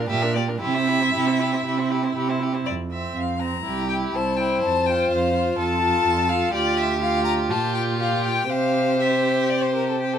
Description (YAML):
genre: quick classical-period movement for string quartet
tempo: 114-126 BPM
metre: 4/4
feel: rubato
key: F major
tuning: A4 = 439 Hz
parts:
  - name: rich violin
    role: second line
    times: 0.0-10.2 s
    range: E4 to C5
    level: -25 LUFS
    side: left 1 dB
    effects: none
  - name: rich viola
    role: accompaniment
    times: 0.0-10.2 s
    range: Bb3 to G4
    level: -27 LUFS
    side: equal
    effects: none
  - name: warm cello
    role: bass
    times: 0.0-10.2 s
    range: C2 to C3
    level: -25 LUFS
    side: right 5 dB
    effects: none
  - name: rich violin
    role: melody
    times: 0.1-10.2 s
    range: G4 to Bb5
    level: -25 LUFS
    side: left 5 dB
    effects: none
room: little or no reverb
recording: close, detailed microphones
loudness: -20 LUFS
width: side -9 dB against mid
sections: 0.0-2.7 A section; 2.7-10.2 B section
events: none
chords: 0.0 Gm/Bb; 0.6 C; 2.7 F5; 3.7 C; 4.6 F; 6.5 Dm; 7.5 Gm7/Bb; 8.5 C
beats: 0.10 | 0.62 1.14 1.66 2.17 | 2.68 3.17 3.66 4.15 | 4.63 5.11 5.59 6.06 | 6.54 7.02 7.51 8.00 | 8.50 9.00 9.50 10.00